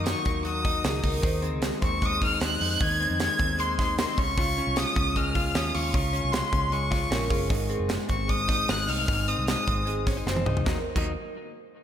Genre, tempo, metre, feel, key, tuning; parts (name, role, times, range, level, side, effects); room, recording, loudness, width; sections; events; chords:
jangly indie pop; 153 BPM; 4/4; straight; A4 = 438 Hz
warm violin; melody; 0.0-9.8 s; C6 to Ab6; -28 LUFS; left 1 dB; slapback echo, tape echo
direct-recorded clean electric guitar; arpeggios; 0.0-11.1 s; Ab2 to F4; -32 LUFS; left 3 dB; slapback echo, tape echo
vintage muted fingered electric bass; bass; 0.0-11.1 s; Gb1 to Gb2; -31 LUFS; equal
modern studio drum kit; drums; 0.1-11.0 s; crash cymbal, hi-hat, kick drum, snare drum, toms; -28 LUFS; right 1 dB
vibraphone with medium mallets; second line; 0.8-1.7, 7.1-11.1 s; Ab4 to C5; -35 LUFS; right 4 dB; slapback echo, tape echo
moderate lush hall reverb, RT60 1.9 s, studio ambience; big arena sound; -24 LUFS; side -9 dB against mid
0.0-10.7 A section; 10.7-11.8 B section
drum fill 10.3-10.7
0.0 Ebm; 1.2 Ab; 4.2 Db; 7.5 Ab; 10.7 Ebm